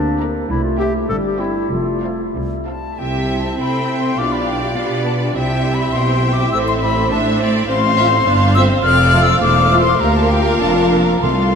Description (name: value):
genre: quick classical-period movement for symphony orchestra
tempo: 93-106 BPM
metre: 2/4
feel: rubato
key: C major, F major from 7.7 s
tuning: A4 = 440 Hz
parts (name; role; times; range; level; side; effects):
- clear clarinet; second line; 0.0-2.3 s; D4 to A4; -23 LUFS; left 2 dB; none
- mellow French horn section; sustained chords; 0.0-11.6 s; G3 to F4; -22 LUFS; equal; none
- clear symphonic double bass section; bass; 0.0-11.6 s; E1 to C3; -21 LUFS; right 1 dB; none
- warm studio cello section; bass; 0.0-11.6 s; C2 to C4; -22 LUFS; equal; none
- warm studio violin section; melody; 0.2-11.6 s; D5 to Bb5; -26 LUFS; right 2 dB; none
- rich studio violin section; second line; 0.2-11.6 s; A4 to G5; -25 LUFS; right 1 dB; none
- rich studio viola section; accompaniment; 0.2-11.6 s; A3 to C5; -23 LUFS; right 2 dB; none
- bright concert flute; second line; 2.7-11.6 s; F5 to F6; -18 LUFS; left 5 dB; none
- timpani; percussion; 11.2-11.6 s; C3; -20 LUFS; right 2 dB; none
room: wet cathedral reverb, RT60 5.7 s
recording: in a vast, echoing space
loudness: -14 LUFS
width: side -6 dB against mid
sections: 0.0-3.0 A section; 3.0-11.6 B section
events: none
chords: 0.0 Bb/D; 0.5 C; 1.7 F; 3.0 C; 4.2 G7/B; 5.4 C; 6.5 Am; 7.7 F/A; 8.8 F; 10.0 Bb/D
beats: | 0.50 1.10 | 1.72 2.36 | 2.99 3.59 | 4.19 4.78 | 5.36 5.94 | 6.53 7.12 | 7.69 8.27 | 8.85 9.42 | 10.01 10.61 | 11.23